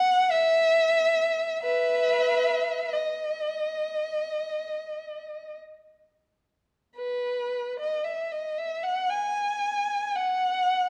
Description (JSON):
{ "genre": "classical, free, expressive piece for unaccompanied violin", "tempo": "36-61 BPM", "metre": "4/4", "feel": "rubato", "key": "E major", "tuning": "A4 = 440 Hz", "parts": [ { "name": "warm violin", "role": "solo", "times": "0.0-10.9 s", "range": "B4 to G#5", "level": "-26 LUFS", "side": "equal", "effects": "none" } ], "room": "moderate recital hall reverb, RT60 1.3 s", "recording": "dark, warm production", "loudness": "-26 LUFS", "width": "mono", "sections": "0.0-7.0 A section; 7.0-10.9 B section", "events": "none", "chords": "none" }